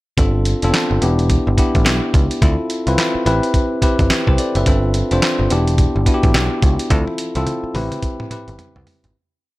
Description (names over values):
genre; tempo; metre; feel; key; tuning
R&B, new jack swing; 107 BPM; 4/4; swing 61% on 16ths; A minor; A4 = 440 Hz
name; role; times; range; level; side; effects
bell-like tine electric piano; accompaniment; 0.2-9.2 s; B3 to E5; -19 LUFS; left 1 dB; none
picked electric bass; bass; 0.2-9.1 s; E1 to D2; -18 LUFS; equal; none
dusty soul sampler-style drum kit; drums; 0.2-9.1 s; handclaps, hi-hat, kick drum, snare drum, toms; -18 LUFS; equal; none
room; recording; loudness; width
digital ambience; none; -14 LUFS; side -19 dB against mid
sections
0.2-9.1 verse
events
fade-out 6.9-9.1; drum fill 6.9-9.1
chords
0.2 G7sus4; 1.0 Em7; 2.4 Dm7; 3.3 Am7; 4.7 G7sus4; 5.5 Em7; 6.9 Dm7; 7.7 Am7 (rootless)